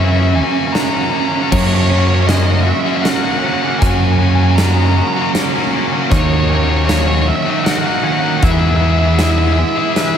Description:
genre	post-rock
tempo	78 BPM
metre	3/4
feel	straight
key	unclear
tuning	A4 = 435 Hz
part	overdriven electric guitar	melody	0.0-10.2 s	C#5 to A#5	-20 LUFS	left 2 dB	diffuse ambient delay
part	twangy electric guitar	arpeggios	0.0-10.2 s	F#2 to B4	-22 LUFS	left 2 dB	ensemble chorus, diffuse ambient delay
part	distorted electric guitar	riff	0.0-10.2 s	F#2 to E4	-19 LUFS	right 8 dB	distortion
part	tight distorted guitar	riff	0.0-10.2 s	D#3 to G#4	-21 LUFS	left 9 dB	distortion
part	growling picked electric bass	bass	0.0-9.6 s	D#2 to F#2	-14 LUFS	equal	overdrive
part	huge arena drum kit	drums	0.8-10.1 s	crash cymbal, hi-hat, kick drum, snare drum	-20 LUFS	equal	none
room	moderate huge ambient reverb, RT60 3.9 s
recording	dreamy mix soaked in reverb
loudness	-12 LUFS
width	side -8 dB against mid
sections	0.0-1.5 A section; 1.5-10.2 B section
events	build-up 0.0-1.5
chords	0.0 F#7; 1.5 F#add9; 6.1 D#m7; 8.4 E

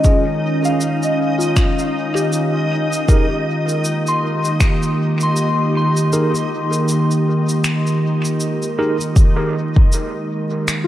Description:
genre	ambient dub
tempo	79 BPM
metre	4/4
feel	swing 58% on 16ths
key	F minor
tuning	A4 = 440 Hz
part	warbly tape-like pad	sustained chords	0.0-10.9 s	Eb3 to G4	-19 LUFS	equal	chorus, built-in reverb, vintage 12-bit sampler grit
part	soft synth bell	arpeggios	0.0-10.9 s	F4 to C6	-24 LUFS	left 2 dB	chorus, phaser, dub echo
part	tine electric piano	stabs	0.0-9.0 s	Db4 to Bb4	-25 LUFS	right 2 dB	medium stereo tremolo, dub echo
part	electronic kick drum	drums	0.0-9.9 s	none	-13 LUFS	equal	none
part	electronic shaker and finger snaps	drums	0.0-10.9 s	none	-26 LUFS	equal	dub echo
part	backwards swelling texture	texture	0.0-9.2 s	Eb4 to Eb5	-26 LUFS	equal	built-in reverb
room	moderate lush hall reverb, RT60 2.5 s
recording	vinyl crackle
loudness	-15 LUFS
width	side -13 dB against mid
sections	0.0-9.2 A section; 9.2-10.9 B section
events	kick drops out 6.1-9.2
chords	0.0 Eb9sus4; 3.1 Fm11; 9.2 Ebsus4

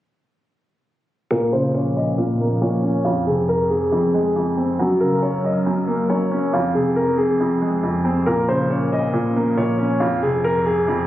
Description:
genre	hip hop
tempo	138 BPM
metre	4/4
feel	half-time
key	F phrygian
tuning	A4 = 440 Hz
part	dark concert grand piano	melody	1.3-11.1 s	F4 to Eb5	-22 LUFS	left 1 dB	low-pass filter
part	felt-muted upright piano	accompaniment	1.3-11.1 s	F2 to Db4	-20 LUFS	equal	low-pass filter
part	hollow soft pad	sustained chords	1.3-11.1 s	F2 to Bb4	-25 LUFS	equal	chorus, low-pass filter
room	light reverb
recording	recorded on a phone in the room, studio reverb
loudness	-17 LUFS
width	side -14 dB against mid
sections	1.3-11.1 A section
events	filter sweep 1.3-11.1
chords	1.3 Bbm; 3.1 Fm; 4.8 Gb; 6.5 Fm; 8.3 Bbm; 10.0 Fm

